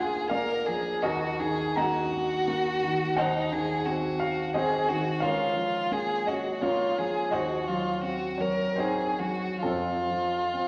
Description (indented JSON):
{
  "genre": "classical, romantic duo for violin and grand piano",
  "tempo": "64-91 BPM",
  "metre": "3/4",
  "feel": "rubato",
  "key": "Eb minor",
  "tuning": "A4 = 443 Hz",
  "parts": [
    { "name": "rich violin", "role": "melody", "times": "0.0-10.7 s", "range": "Eb4 to Bb4", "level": "-31 LUFS", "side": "equal", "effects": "none" },
    { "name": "clear baby grand piano", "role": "accompaniment", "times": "0.0-10.7 s", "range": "Db2 to Bb5", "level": "-31 LUFS", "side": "equal", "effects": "none" }
  ],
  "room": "wet recital hall reverb, RT60 1.7 s",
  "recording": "vinyl crackle",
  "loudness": "-28 LUFS",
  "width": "mono",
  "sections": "0.0-10.7 A section",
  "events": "none",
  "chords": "0.0 Bb7/D; 1.0 Ebm; 3.2 Cdim/Eb; 5.2 Bbm/Db; 7.3 Cdim/Eb; 9.6 F"
}